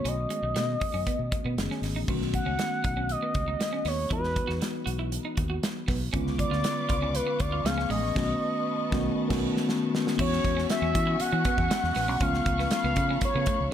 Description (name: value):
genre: polished 1980s jazz-funk pop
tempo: 118 BPM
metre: 4/4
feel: straight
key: E major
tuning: A4 = 438 Hz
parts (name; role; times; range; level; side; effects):
- expressive synth lead; melody; 0.0-13.7 s; B4 to F#5; -30 LUFS; equal; chorus
- mellow tine electric piano; accompaniment; 0.0-13.7 s; D3 to G#4; -31 LUFS; left 2 dB; wide subtle chorus
- fingered electric bass; bass; 0.0-13.7 s; F#1 to E3; -31 LUFS; equal; none
- electric guitar at the edge of break-up; riff; 0.1-13.6 s; G#3 to F#4; -37 LUFS; right 6 dB; lush chorus
- modern studio drum kit; drums; 0.1-13.6 s; crash cymbal, hi-hat, kick drum, snare drum; -31 LUFS; equal; none
- warm studio string section; sustained chords; 6.1-13.7 s; F#4 to D6; -37 LUFS; left 3 dB; none
room: light reverb, small room ambience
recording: none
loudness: -25 LUFS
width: side -10 dB against mid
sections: 0.0-2.1 A section; 2.1-10.2 B section; 10.2-13.7 C section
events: band accent 8.2-10.2; drum fill 9.2-10.2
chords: 0.0 B9; 4.1 Emaj9; 6.1 C#7b9; 7.7 C#7b13; 8.2 B9; 10.2 E69; 12.2 C#aug7